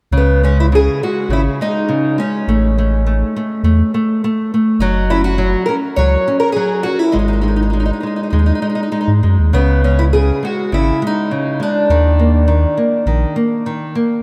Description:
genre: fado-style ballad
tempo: 102 BPM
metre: 4/4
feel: rubato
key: C# minor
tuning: A4 = 439 Hz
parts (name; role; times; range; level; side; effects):
- nylon-string guitar; accompaniment; 0.1-14.2 s; C#3 to C#4; -20 LUFS; equal; none
- warm sub bass; bass; 0.1-13.3 s; F#1 to G#2; -16 LUFS; equal; none
- fingerpicked twelve-string acoustic guitar; melody; 0.2-13.3 s; B3 to C#5; -20 LUFS; equal; none
room: moderate cathedral reverb, RT60 5.8 s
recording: in a vast, echoing space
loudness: -15 LUFS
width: mono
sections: 0.1-14.2 A section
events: none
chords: 0.1 C#5; 2.5 A; 4.8 F#5; 7.2 G#5; 9.5 C#5; 11.9 D#5

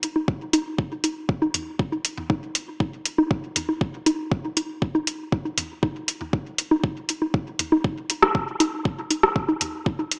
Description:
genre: techno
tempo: 119 BPM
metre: 4/4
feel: straight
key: none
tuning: none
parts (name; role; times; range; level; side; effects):
- deep house drum kit; drums; 0.0-10.2 s; hi-hat, rim click; -23 LUFS; equal; studio reverb
- electronic bongos and toms; percussion; 0.2-10.1 s; none; -28 LUFS; equal; sidechain pumping on perc, studio reverb, sidechain pumping on toms, dub echo
- electronic kick drum; drums; 0.3-10.0 s; none; -27 LUFS; equal; studio reverb
room: wet spring reverb, RT60 2.1 s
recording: home recording on cassette, small speaker sound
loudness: -25 LUFS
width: mono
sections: 0.0-10.2 A section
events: none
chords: none

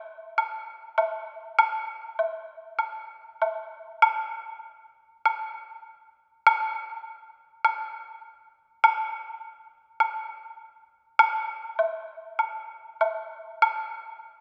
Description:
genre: chinese traditional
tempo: 100 BPM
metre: 4/4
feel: rubato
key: none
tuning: none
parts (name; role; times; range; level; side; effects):
- woodblock; percussion; 0.4-13.8 s; none; -26 LUFS; equal; none
room: wet scoring stage reverb, RT60 1.7 s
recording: dark, warm production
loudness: -27 LUFS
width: mono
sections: 0.0-4.0 A section; 4.0-14.4 B section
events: none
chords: none

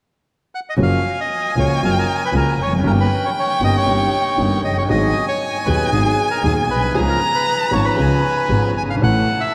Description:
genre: tango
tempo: 116 BPM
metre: 4/4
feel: rubato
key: F# major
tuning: A4 = 440 Hz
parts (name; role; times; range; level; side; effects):
- bandoneon; melody; 0.5-9.5 s; G#4 to G#5; -24 LUFS; equal; diffuse ambient delay
- dark violin; second line; 0.8-9.5 s; G5 to A#5; -24 LUFS; equal; diffuse ambient delay
- clear concert grand piano; accompaniment; 0.8-9.2 s; D#1 to A4; -23 LUFS; equal; analog chorus
- rich double bass; bass; 0.8-9.2 s; E#1 to D#2; -23 LUFS; equal; none
room: wet cathedral reverb, RT60 6.3 s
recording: dreamy mix soaked in reverb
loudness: -18 LUFS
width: mono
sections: 0.8-9.5 A section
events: none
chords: 0.0 N.C.; 0.8 F#maj7; 2.8 D#7/G; 4.9 G#m7; 6.9 C#7; 9.0 A

